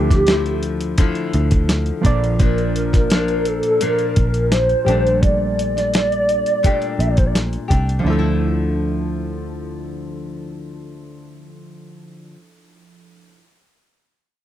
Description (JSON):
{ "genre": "indie pop, bedroom pop", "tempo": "85 BPM", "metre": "4/4", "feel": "straight", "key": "D minor", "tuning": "A4 = 440 Hz", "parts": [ { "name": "hollow clarinet-like synth lead", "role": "melody", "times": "0.0-7.3 s", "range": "G4 to E5", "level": "-19 LUFS", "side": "equal", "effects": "ensemble chorus" }, { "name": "nylon-string guitar", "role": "accompaniment", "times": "0.0-12.4 s", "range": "Bb2 to G4", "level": "-25 LUFS", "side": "left 5 dB", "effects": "lush chorus, warbly pitch drift" }, { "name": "warm analog keys", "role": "accompaniment", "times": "0.0-13.4 s", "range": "F3 to D5", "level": "-27 LUFS", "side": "right 5 dB", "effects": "chorus" }, { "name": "vintage muted picked electric bass", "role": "bass", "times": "0.0-12.3 s", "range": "Bb1 to D2", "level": "-21 LUFS", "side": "equal", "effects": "none" }, { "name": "dusty soul sampler-style drum kit", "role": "drums", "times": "0.1-8.0 s", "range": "hi-hat, kick drum, snare drum", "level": "-17 LUFS", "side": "equal", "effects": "none" } ], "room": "little or no reverb", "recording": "dry, close 1970s-style studio recording", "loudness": "-16 LUFS", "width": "side -11 dB against mid", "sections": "0.0-8.1 A section; 8.1-10.9 B section", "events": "none", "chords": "0.0 Dmadd9; 2.0 Bb; 4.9 Gmadd9/Bb; 8.1 Dmadd9" }